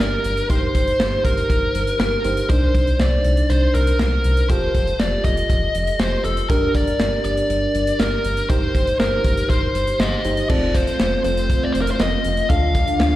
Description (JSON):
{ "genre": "synth-pop", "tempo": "120 BPM", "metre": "4/4", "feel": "straight", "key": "unclear", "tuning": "A4 = 440 Hz", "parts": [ { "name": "dark smooth lead guitar", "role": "melody", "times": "0.0-13.2 s", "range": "A4 to F5", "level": "-22 LUFS", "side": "left 1 dB", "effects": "overdrive, slapback echo" }, { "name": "FM electric piano", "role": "accompaniment", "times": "0.0-13.2 s", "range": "C4 to C5", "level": "-26 LUFS", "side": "right 2 dB", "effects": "chorus" }, { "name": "round analog bass", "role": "bass", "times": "0.0-13.2 s", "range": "F1 to D2", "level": "-22 LUFS", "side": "equal", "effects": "none" }, { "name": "modern studio drum kit", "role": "drums", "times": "0.0-13.1 s", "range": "crash cymbal, hi-hat, kick drum, snare drum", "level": "-22 LUFS", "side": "equal", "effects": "none" }, { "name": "ensemble organ-string", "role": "sustained chords", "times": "10.5-13.2 s", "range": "D3 to A4", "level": "-25 LUFS", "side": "equal", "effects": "ensemble chorus" } ], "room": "light reverb", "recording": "played on a big sound system in a bare room, stone room reverb", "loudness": "-16 LUFS", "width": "side -15 dB against mid", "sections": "0.0-10.5 A section; 10.5-13.2 B section", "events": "none", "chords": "0.5 Eb6/G; 2.5 Cmadd9; 4.5 Fadd9; 6.5 Gm; 8.5 Eb6/G; 10.5 F; 12.5 Dm" }